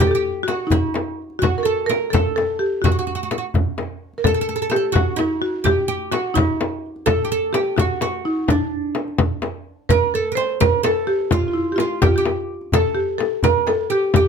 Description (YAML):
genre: Persian modal ensemble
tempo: 85 BPM (dotted quarters)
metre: 6/8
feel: straight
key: A dastgah shur from 9.9 s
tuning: A4 = 440 Hz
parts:
  - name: buzzing marimba with medium mallets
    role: melody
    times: 0.0-14.3 s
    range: D4 to C5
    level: -21 LUFS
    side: equal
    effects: none
  - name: oud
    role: second line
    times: 0.0-14.3 s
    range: D4 to C5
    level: -24 LUFS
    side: right 7 dB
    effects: none
  - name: frame drum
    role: percussion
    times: 0.0-14.3 s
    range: none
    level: -22 LUFS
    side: left 5 dB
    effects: none
  - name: tombak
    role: percussion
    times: 0.0-14.3 s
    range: none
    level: -23 LUFS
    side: right 1 dB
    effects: none
room: little or no reverb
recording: close, detailed microphones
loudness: -18 LUFS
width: side -6 dB against mid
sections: 0.0-9.9 A section; 9.9-14.3 B section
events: none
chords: none